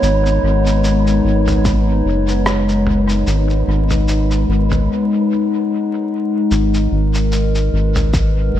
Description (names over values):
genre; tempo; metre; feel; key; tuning
ambient dub; 74 BPM; 4/4; swing 56% on 16ths; G# minor; A4 = 440 Hz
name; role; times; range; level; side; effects
warbly tape-like pad; sustained chords; 0.0-8.6 s; G#3 to F#5; -17 LUFS; left 2 dB; chorus, built-in reverb
round analog bass; bass; 0.0-8.6 s; F#1 to G#1; -16 LUFS; equal; none
lo-fi sampler-style drum kit; drums; 0.0-8.3 s; rim click, shaker, toms; -25 LUFS; equal; studio reverb, dub echo
wind-like tuned noise texture; texture; 0.0-4.9 s; B3; -26 LUFS; right 3 dB; built-in reverb
electronic kick drum; drums; 1.7-1.8, 8.1-8.3 s; none; -19 LUFS; equal; studio reverb
room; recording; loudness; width
moderate concert hall reverb, RT60 2.0 s; vinyl crackle; -14 LUFS; side -11 dB against mid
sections
0.0-6.5 A section; 6.5-8.6 B section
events
none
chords
0.0 G#m7